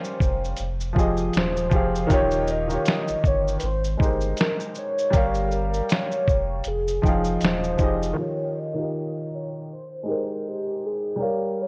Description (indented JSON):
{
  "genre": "lo-fi hip hop",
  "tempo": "79 BPM",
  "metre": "4/4",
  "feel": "swing 59% on 16ths",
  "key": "unclear",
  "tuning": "A4 = 440 Hz",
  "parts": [
    { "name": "warm velvety synth lead", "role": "melody", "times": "0.0-11.7 s", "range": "G4 to Eb5", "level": "-30 LUFS", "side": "equal", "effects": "chorus, low-pass filter" },
    { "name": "warm upright piano", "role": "accompaniment", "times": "0.0-11.7 s", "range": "Eb3 to G5", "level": "-29 LUFS", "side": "equal", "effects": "cassette tape, low-pass filter" },
    { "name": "lo-fi sampler-style drum kit", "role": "drums", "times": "0.0-8.2 s", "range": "hi-hat, kick drum, shaker, snare drum", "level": "-26 LUFS", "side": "equal", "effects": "vintage 12-bit sampler grit" },
    { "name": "sub bass with octave", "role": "bass", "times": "0.2-8.1 s", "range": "Eb1 to Ab1", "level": "-31 LUFS", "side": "equal", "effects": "none" }
  ],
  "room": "little or no reverb",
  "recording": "worn, warbling old tape, cassette tape, warbly pitch drift",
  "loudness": "-24 LUFS",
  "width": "mono",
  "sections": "0.0-8.2 A section; 8.2-11.7 B section",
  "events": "none",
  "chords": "0.0 Gm7b5; 0.6 Fm7; 2.1 Eb7; 3.6 Abmaj9; 5.1 Gm7b5; 6.7 Fm7; 8.2 Eb7; 9.7 Abmaj9"
}